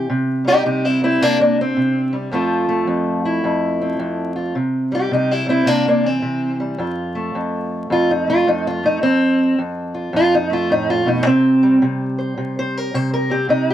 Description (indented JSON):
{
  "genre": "acoustic country blues, solo or duo",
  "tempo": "107 BPM",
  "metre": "4/4",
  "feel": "swing 64% on 8ths",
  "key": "C major",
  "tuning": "A4 = 440 Hz",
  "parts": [
    { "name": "fingerpicked steel-string acoustic guitar", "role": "solo", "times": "0.0-13.7 s", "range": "F2 to C5", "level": "-16 LUFS", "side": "equal", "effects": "none" }
  ],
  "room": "little or no reverb",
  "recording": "dry, close 1970s-style studio recording, vinyl crackle",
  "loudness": "-16 LUFS",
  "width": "side -11 dB against mid",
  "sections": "0.0-13.7 A section",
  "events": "steel-string acoustic guitar solo 0.0-13.7",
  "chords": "0.0 C; 2.3 F; 4.6 C; 6.8 F; 11.3 C5",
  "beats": "| 0.09 0.65 1.21 1.77 | 2.33 2.88 3.44 4.00 | 4.56 5.12 5.67 6.23 | 6.79 7.35 7.91 8.47 | 9.03 9.58 10.14 10.70 | 11.26 11.82 12.38 12.94 | 13.50"
}